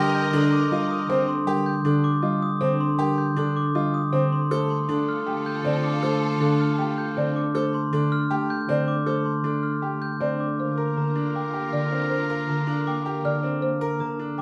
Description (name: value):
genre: classical, minimalist pattern music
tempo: 158 BPM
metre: 4/4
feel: straight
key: G minor from 10.6 s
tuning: A4 = 440 Hz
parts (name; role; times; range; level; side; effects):
- folk marimba with medium mallets; melody; 0.0-14.4 s; A4 to G5; -33 LUFS; equal; none
- clear clarinet; second line; 0.0-1.2, 4.5-7.3, 10.6-13.4 s; A4 to Bb4; -34 LUFS; equal; none
- concert harp; accompaniment; 0.0-14.4 s; D3 to Bb3; -27 LUFS; equal; none
- warm studio violin section; sustained chords; 0.0-1.2, 4.5-7.3, 10.6-13.4 s; F4 to Eb5; -38 LUFS; equal; none
- clear grand piano; arpeggios; 0.0-14.4 s; C4 to Bb4; -32 LUFS; equal; none
- glockenspiel with rubber mallets; arpeggios; 0.1-14.4 s; Bb5 to G6; -32 LUFS; equal; none
room: wet large studio reverb, RT60 1.2 s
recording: none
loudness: -24 LUFS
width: mono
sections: 0.0-10.6 A section; 10.6-14.4 B section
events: none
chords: 0.0 Cm11; 4.5 F6; 10.6 Gm7